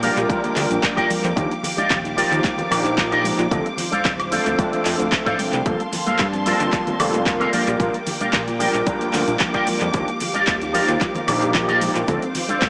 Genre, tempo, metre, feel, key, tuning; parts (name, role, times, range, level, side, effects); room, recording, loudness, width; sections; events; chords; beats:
nu-disco, nu disco; 112 BPM; 4/4; straight; A4 = 440 Hz
overdriven tine electric piano; accompaniment; 0.0-12.2 s; F3 to A5; -26 LUFS; equal; ensemble chorus, sidechain pumping, analog delay
dark symphonic string section; sustained chords; 0.0-12.7 s; Bb3 to D6; -30 LUFS; equal; sidechain pumping
soft round pluck; arpeggios; 0.0-12.7 s; F3 to A4; -32 LUFS; equal; ensemble chorus, cassette tape, sidechain pumping, analog delay
electric guitar with an envelope filter; riff; 0.0-12.7 s; G4 to G5; -26 LUFS; equal; analog chorus, analog delay
fat analog bass; bass; 0.0-12.7 s; D1 to Bb2; -30 LUFS; equal
pop drum kit; drums; 0.0-12.7 s; cabasa, handclaps, hi-hat, woodblock; -28 LUFS; equal; overdrive, analog delay
downlifter; sound effects; 0.0-1.4 s; barely audible
cabasa and congas; percussion; 0.2-12.7 s; -37 LUFS; equal
electronic kick drum; drums; 0.3-12.7 s; -27 LUFS; equal; overdrive
moderate echo chamber reverb, RT60 2.3 s; echo-heavy mix, small speaker sound; -20 LUFS; mono
0.0-12.7 A section
clean electric guitar fill 4.6-5.7
0.0 Bb6; 1.4 Ebmaj9; 3.5 Dm7; 5.7 Gm11; 7.5 Bb6; 9.9 Ebmaj9; 12.1 Dm7
0.30 0.83 | 1.37 1.91 2.44 2.98 | 3.51 4.05 4.58 5.12 | 5.66 6.19 6.73 7.26 | 7.80 8.34 8.87 9.41 | 9.94 10.48 11.01 11.55 | 12.09 12.62